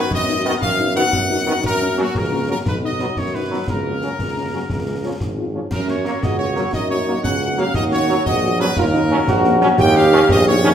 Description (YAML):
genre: military-style march for wind band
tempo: 118 BPM (dotted quarters)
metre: 6/8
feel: straight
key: F# major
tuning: A4 = 443 Hz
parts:
  - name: bright trumpet section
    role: melody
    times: 0.0-10.7 s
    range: F#4 to G5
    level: -22 LUFS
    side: equal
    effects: none
  - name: clear tuba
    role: bass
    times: 0.0-10.7 s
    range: G#1 to F#2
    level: -21 LUFS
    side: right 1 dB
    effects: none
  - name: concert snare drum, concert bass drum and clash cymbals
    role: drums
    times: 0.1-10.7 s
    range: none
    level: -25 LUFS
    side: left 1 dB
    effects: none
  - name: mellow French horn section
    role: accompaniment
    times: 0.3-10.7 s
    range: G#3 to F#4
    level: -26 LUFS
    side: left 4 dB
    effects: none
  - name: warm trombone section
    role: sustained chords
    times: 0.5-10.7 s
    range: D#3 to C#4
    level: -25 LUFS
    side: right 1 dB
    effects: none
  - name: clear euphonium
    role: second line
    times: 5.7-10.7 s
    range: C#4 to G4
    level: -19 LUFS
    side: right 2 dB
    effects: none
room: wet recital hall reverb, RT60 1.4 s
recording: recorded in a church or concert hall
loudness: -16 LUFS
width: side -9 dB against mid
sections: 0.0-5.7 A section; 5.7-10.7 B section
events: none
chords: 0.0 B/F#; 1.6 F#; 2.7 B; 3.7 F#/C#; 4.7 C#; 5.7 F#; 7.8 D#m7; 9.8 D#7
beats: 0.11 | 0.62 1.13 | 1.64 2.15 | 2.66 3.17 | 3.68 4.19 | 4.70 5.21 | 5.71 6.22 | 6.73 7.24 | 7.75 8.26 | 8.77 9.28 | 9.78 10.29